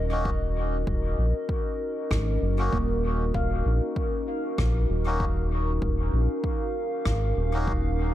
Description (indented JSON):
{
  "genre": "ambient dub",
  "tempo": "97 BPM",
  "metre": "4/4",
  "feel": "swing 55% on 16ths",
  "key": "Eb minor",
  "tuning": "A4 = 440 Hz",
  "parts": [
    { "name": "warbly tape-like pad", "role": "sustained chords", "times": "0.0-8.1 s", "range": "Db4 to F5", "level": "-30 LUFS", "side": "left 1 dB", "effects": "chorus, built-in reverb" },
    { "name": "round analog bass", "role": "bass", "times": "0.0-8.1 s", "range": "Eb1 to Bb1", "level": "-25 LUFS", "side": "equal", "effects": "none" },
    { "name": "melodica", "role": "stabs", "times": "0.1-7.7 s", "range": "Bb3 to Gb4", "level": "-35 LUFS", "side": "left 2 dB", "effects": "dub echo" },
    { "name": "electronic kick drum", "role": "drums", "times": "0.3-7.8 s", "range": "none", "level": "-31 LUFS", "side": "equal", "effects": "overdrive" },
    { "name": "rim click", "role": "drums", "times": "2.1-7.2 s", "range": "none", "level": "-40 LUFS", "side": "left 1 dB", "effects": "dub echo" },
    { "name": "handpan", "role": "arpeggios", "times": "2.7-6.4 s", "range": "Bb3 to F5", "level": "-36 LUFS", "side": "equal", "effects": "low-pass filter, dub echo" }
  ],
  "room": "small room reverb",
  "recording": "none",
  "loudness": "-24 LUFS",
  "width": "side -13 dB against mid",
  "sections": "0.0-8.1 A section",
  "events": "none",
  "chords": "0.0 Ebm7"
}